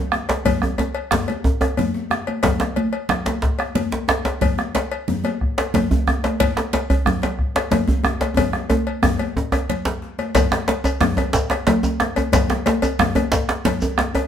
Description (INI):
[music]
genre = west african traditional, West African drum ensemble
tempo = 121 BPM (dotted quarters)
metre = 12/8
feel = straight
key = none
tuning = none
[part]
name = bombo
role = percussion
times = 0.1-14.1 s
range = none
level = -23 LUFS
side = right 1 dB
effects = none
[part]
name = djembe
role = percussion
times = 0.1-14.2 s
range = none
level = -26 LUFS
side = left 5 dB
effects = none
[part]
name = congas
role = percussion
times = 0.3-13.8 s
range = none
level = -25 LUFS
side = right 1 dB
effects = none
[part]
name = cowbell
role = percussion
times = 0.3-14.3 s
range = none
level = -25 LUFS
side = left 7 dB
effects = none
[part]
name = djembe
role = percussion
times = 0.3-14.3 s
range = none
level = -22 LUFS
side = right 2 dB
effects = none
[part]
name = shekere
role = percussion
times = 10.4-14.0 s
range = none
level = -29 LUFS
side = right 2 dB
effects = none
[sound]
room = moderate studio reverb, RT60 0.8 s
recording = band playing live in one room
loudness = -18 LUFS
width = side -9 dB against mid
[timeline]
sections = 0.0-10.4 A section; 10.4-14.3 B section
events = drum fill 8.4-10.4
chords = none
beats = | 0.46 0.95 1.45 1.94 | 2.44 2.93 3.43 3.92 | 4.42 4.91 5.41 5.90 | 6.40 6.89 7.39 7.88 | 8.38 8.87 9.37 9.86 | 10.35 10.85 11.34 11.84 | 12.33 12.82 13.32 13.81